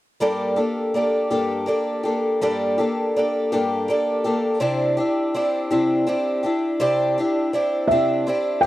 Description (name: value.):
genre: acoustic folk duo or small band.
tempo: 55 BPM (dotted quarters).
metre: 6/8.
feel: straight.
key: G dorian.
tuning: A4 = 440 Hz.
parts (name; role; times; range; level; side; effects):
picked twelve-string acoustic guitar; accompaniment; 0.2-8.7 s; G2 to A4; -19 LUFS; equal; none.
felt-muted upright piano; melody; 7.9-8.7 s; E5 to G5; -19 LUFS; right 1 dB; none.
room: little or no reverb.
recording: dry, close 1970s-style studio recording.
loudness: -19 LUFS.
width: side -15 dB against mid.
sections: 0.2-8.7 A section.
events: none.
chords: 0.2 Gmadd9; 4.6 Cadd9.